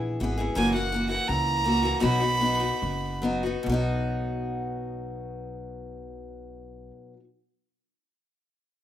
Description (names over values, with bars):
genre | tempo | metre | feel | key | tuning
honky-tonk and classic country | 135-168 BPM | 4/4 | straight | B major | A4 = 440 Hz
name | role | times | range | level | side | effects
picked acoustic archtop guitar | accompaniment | 0.0-7.2 s | F#2 to G#4 | -28 LUFS | left 2 dB | plate reverb
upright bass | bass | 0.0-6.9 s | F#1 to C#2 | -32 LUFS | equal | none
clear fiddle | melody | 0.6-3.2 s | F#5 to B5 | -27 LUFS | right 3 dB | plate reverb
room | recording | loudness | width
wet small room reverb, RT60 0.5 s | rough home demo mix | -24 LUFS | side -11 dB against mid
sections
0.0-3.7 A section; 3.7-7.2 B section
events
slowing down 0.6-3.7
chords
0.0 E; 0.6 F#7; 2.0 B